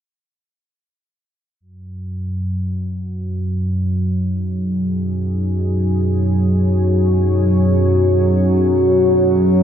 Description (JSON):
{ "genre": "dark ambient drone", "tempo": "free time", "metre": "none", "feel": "none", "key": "unclear", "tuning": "A4 = 439 Hz", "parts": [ { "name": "dark analog pad", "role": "sustained chords", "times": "1.6-9.6 s", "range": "B2 to C#5", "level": "-25 LUFS", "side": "equal", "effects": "chorus, shimmer reverb" }, { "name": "analog drone", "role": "drone", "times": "1.6-9.6 s", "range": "F#2 to F#3", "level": "-15 LUFS", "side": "equal", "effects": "chorus" } ], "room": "moderate plate reverb, RT60 3.1 s", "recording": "none", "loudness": "-15 LUFS", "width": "side -9 dB against mid", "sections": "1.6-9.6 A section", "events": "fade-in on analog synth pad 1.6-9.6", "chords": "1.6 Badd9" }